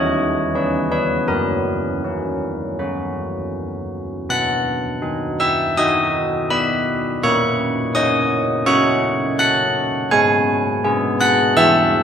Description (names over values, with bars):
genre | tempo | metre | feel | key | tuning
classical, tune for church bells | 82 BPM | 4/4 | straight | B major | A4 = 440 Hz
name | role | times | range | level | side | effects
carillon bells | solo | 0.0-12.0 s | E3 to F#6 | -16 LUFS | equal | none
room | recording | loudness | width
moderate recital hall reverb, RT60 1.7 s | minimal, uncompressed stereo recording | -16 LUFS | side -8 dB against mid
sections
0.0-4.3 A section; 4.3-12.0 A section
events
none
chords
0.0 C#m7/E; 1.3 F#; 4.3 B; 7.2 F#/A#; 10.1 G#m